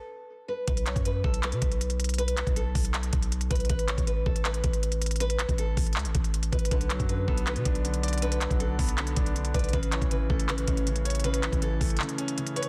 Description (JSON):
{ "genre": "hip hop, trap", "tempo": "159 BPM", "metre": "4/4", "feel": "half-time", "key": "B minor", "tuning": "A4 = 441 Hz", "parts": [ { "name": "nylon-string guitar", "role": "melody", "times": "0.0-12.7 s", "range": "A4 to C#5", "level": "-37 LUFS", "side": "equal", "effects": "low-pass filter, digital delay" }, { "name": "long sustained 808-style bass", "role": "bass", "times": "0.7-12.0 s", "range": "A1 to B2", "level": "-32 LUFS", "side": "equal", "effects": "none" }, { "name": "trap drum kit", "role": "drums", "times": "0.7-12.7 s", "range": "handclaps, hi-hat, kick drum", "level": "-31 LUFS", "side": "equal", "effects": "none" }, { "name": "warm concert grand piano", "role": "accompaniment", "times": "6.7-12.7 s", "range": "C#3 to D5", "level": "-35 LUFS", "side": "equal", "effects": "low-pass filter" } ], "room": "small room ambience", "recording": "dense, heavily limited modern master", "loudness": "-28 LUFS", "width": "mono", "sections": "0.0-12.7 A section", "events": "break 0.0-0.7, 12.0-12.7", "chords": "0.0 Asus2; 0.7 B5; 3.7 N.C.; 6.7 Bm; 9.7 A", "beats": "0.30 | 0.68 1.05 1.43 1.81 | 2.19 2.56 2.94 3.32 | 3.69 4.07 4.45 4.83 | 5.20 5.58 5.96 6.34 | 6.71 7.09 7.47 7.85 | 8.22 8.60 8.98 9.36 | 9.73 10.11 10.49 10.87 | 11.24 11.62 12.00 12.37" }